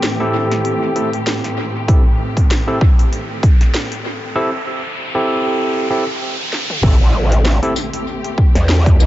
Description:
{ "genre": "glitch hop", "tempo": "97 BPM", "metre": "4/4", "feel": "swing 56% on 16ths", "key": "A minor pentatonic", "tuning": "A4 = 440 Hz", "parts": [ { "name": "warm symphonic string section", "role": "sustained chords", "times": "0.0-9.1 s", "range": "A2 to G4", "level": "-24 LUFS", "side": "equal", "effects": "vintage 12-bit sampler grit, sidechain pumping, low-pass filter" }, { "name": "drum and bass drum kit", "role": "drums", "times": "0.0-9.1 s", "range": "crash cymbal, hi-hat, snare drum, tambourine, toms", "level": "-24 LUFS", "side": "equal", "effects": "high-pass filter on hats, high-pass filter on snare, high-pass filter on toms, high-pass filter on cymbals, high-pass filter on perc, analog delay" }, { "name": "riser and impact", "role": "sound effects", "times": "0.9-9.1 s", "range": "none", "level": "-26 LUFS", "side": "equal", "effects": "none" }, { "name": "warbly tape-like pad", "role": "texture", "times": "0.0-4.4 s", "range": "C4 to G5", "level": "-32 LUFS", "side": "equal", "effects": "none" }, { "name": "overdriven tine electric piano", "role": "stabs", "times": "0.2-7.7 s", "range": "C4 to A4", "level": "-20 LUFS", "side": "right 1 dB", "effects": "sidechain pumping, analog delay" }, { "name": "electronic kick drum", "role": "drums", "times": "1.9-9.0 s", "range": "none", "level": "-11 LUFS", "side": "equal", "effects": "none" }, { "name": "growl bass", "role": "bass", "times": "6.8-9.1 s", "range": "A1 to E2", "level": "-14 LUFS", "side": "equal", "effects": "chorus" } ], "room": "light reverb, digital ambience", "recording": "echo-heavy mix, nothing above 7.7 kHz", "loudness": "-14 LUFS", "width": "side -14 dB against mid", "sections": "0.0-6.8 A section; 6.8-9.1 B section", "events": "build-up 0.0-6.8; riser 0.9-6.8; break 4.4-6.8; drum fill 6.5-6.8; drop 6.8-9.1; impact 6.8-9.1", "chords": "0.0 Am7" }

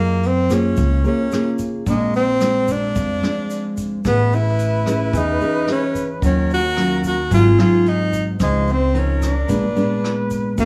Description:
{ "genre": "bossa nova", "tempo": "110 BPM", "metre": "4/4", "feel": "straight", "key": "unclear", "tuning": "A4 = 435 Hz", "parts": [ { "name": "breathy tenor saxophone", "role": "melody", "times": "0.0-10.7 s", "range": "Ab3 to Gb4", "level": "-22 LUFS", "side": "equal", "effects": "plate reverb" }, { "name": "nylon-string guitar", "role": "accompaniment", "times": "0.0-10.7 s", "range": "Ab2 to B4", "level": "-23 LUFS", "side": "equal", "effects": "none" }, { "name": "upright bass", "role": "bass", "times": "0.0-10.7 s", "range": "Ab1 to Gb2", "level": "-23 LUFS", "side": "equal", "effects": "none" }, { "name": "vintage brush drum kit", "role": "drums", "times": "0.2-10.7 s", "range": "hi-hat, kick drum, rim click", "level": "-30 LUFS", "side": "equal", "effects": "none" }, { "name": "egg shaker", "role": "percussion", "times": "0.5-10.7 s", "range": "none", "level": "-45 LUFS", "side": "equal", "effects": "none" }, { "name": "warm baby grand piano", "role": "accompaniment", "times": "1.0-6.2 s", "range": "G#4 to Bb4", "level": "-38 LUFS", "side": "equal", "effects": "none" }, { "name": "silver concert flute", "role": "second line", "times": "4.0-10.7 s", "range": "Gb4 to C5", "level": "-30 LUFS", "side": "equal", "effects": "none" } ], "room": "moderate studio reverb, RT60 0.8 s", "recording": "small room ambience", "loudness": "-18 LUFS", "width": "mono", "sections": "0.0-10.7 A section", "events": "none", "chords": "0.0 Gbmaj9; 1.9 Bb9; 4.0 Amaj9; 6.2 Ebm9; 7.3 Ab7; 8.4 Dbmaj9; 9.5 Bb7b9" }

